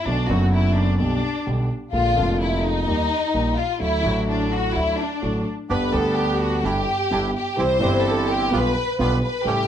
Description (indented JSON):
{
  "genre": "tango",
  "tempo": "127 BPM",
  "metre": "4/4",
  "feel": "rubato",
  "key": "G major",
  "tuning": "A4 = 440 Hz",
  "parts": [
    { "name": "warm symphonic violin section", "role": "second line", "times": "0.0-9.7 s", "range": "D4 to C5", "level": "-23 LUFS", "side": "left 2 dB", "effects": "none" },
    { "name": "warm concert grand piano", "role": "accompaniment", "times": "0.1-9.7 s", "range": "F1 to G4", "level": "-23 LUFS", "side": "right 1 dB", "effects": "none" },
    { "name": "upright bass", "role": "bass", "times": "0.1-9.7 s", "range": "F1 to Eb2", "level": "-27 LUFS", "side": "equal", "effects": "none" },
    { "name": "bandoneon", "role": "stabs", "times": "5.7-9.7 s", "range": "A3 to G4", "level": "-28 LUFS", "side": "right 4 dB", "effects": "none" }
  ],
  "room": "moderate large studio reverb, RT60 0.9 s",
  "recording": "none",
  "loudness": "-19 LUFS",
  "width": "side -9 dB against mid",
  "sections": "0.0-9.7 A section",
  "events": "violin section solo 0.0-9.7",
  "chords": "0.1 Bm; 1.0 G/B; 1.9 Bb7; 2.9 Eb; 3.8 D; 5.7 G; 6.6 Em7/G; 7.6 C; 8.5 G7/B"
}